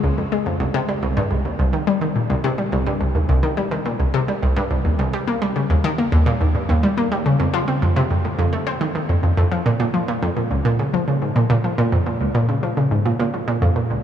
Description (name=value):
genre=ambient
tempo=106 BPM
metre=4/4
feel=straight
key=Bb minor from 9.7 s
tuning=A4 = 439 Hz
part: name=analog pluck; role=solo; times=0.0-14.0 s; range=C2 to C4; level=-17 LUFS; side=equal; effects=chorus, analog delay
room=wet huge ambient reverb, RT60 8.3 s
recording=small room ambience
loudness=-17 LUFS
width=side -9 dB against mid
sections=0.0-9.7 A section; 9.7-14.0 B section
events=none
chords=none